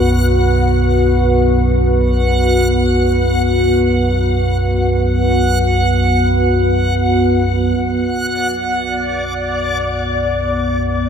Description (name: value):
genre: dark ambient drone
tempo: free time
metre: none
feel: none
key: unclear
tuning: A4 = 436 Hz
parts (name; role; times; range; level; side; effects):
- deep dark ambient pad; sustained chords; 0.0-11.1 s; B3 to B4; -17 LUFS; equal; chorus, built-in reverb
- deep rumbling drone; drone; 0.0-11.1 s; B1 to F#2; -17 LUFS; equal; built-in reverb, wide subtle chorus
- backwards swelling texture; texture; 0.0-11.1 s; D5 to F#5; -20 LUFS; equal; built-in reverb
room: wet huge ambient reverb, RT60 7.9 s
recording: none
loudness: -13 LUFS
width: side -7 dB against mid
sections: 0.0-7.8 A section; 7.8-11.1 B section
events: none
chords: 0.0 B5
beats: free time